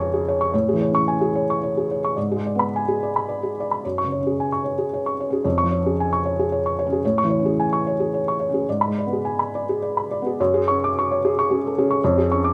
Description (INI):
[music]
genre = neoclassical minimalist piano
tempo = 102-115 BPM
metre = 3/4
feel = rubato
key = F# minor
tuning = A4 = 440 Hz
[part]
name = felt-muted upright piano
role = solo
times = 0.0-12.5 s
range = E#2 to D6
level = -22 LUFS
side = equal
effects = none
[sound]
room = light reverb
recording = none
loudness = -22 LUFS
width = mono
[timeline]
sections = 0.0-3.8 A section; 3.8-10.4 B section; 10.4-12.5 C section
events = none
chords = 0.0 C#/E#; 0.5 Amaj7; 2.2 G#dim; 3.8 F#sus2; 5.4 C#/E#; 7.0 Amaj7; 8.7 G#dim; 10.4 F#sus2; 12.0 C#/E#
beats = 0.00 | 0.53 1.06 1.61 | 2.16 2.72 3.28 | 3.84 4.38 4.91 | 5.45 5.98 6.50 | 7.02 7.55 8.10 | 8.67 9.25 9.82 | 10.39 10.94 11.48 | 12.01